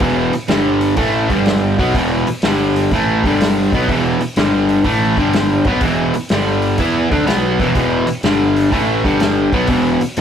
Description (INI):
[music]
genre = blues rock power trio and southern rock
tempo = 124 BPM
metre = 4/4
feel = swing 67% on 8ths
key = unclear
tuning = A4 = 441 Hz
[part]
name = crunchy overdriven guitar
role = riff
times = 0.0-10.2 s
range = E2 to E4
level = -14 LUFS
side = equal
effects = none
[part]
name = fuzz fingered electric bass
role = bass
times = 0.0-10.2 s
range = E1 to E2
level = -23 LUFS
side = equal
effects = overdrive
[part]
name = vintage drum kit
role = drums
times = 0.0-10.2 s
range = hi-hat, kick drum, snare drum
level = -21 LUFS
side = equal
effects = none
[sound]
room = light reverb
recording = rough rehearsal-room recording, warm saturation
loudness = -13 LUFS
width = side -8 dB against mid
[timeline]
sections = 0.0-10.2 A section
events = none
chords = 0.0 E5; 0.5 G5; 1.0 A5; 1.2 G5; 1.7 E5; 2.4 G5; 2.9 A5; 3.2 G5; 3.6 E5; 4.4 G5; 4.9 A5; 5.1 G5; 5.6 E5; 6.3 G5; 6.8 E5; 8.2 G5; 8.7 A5; 9.0 G5; 9.4 E5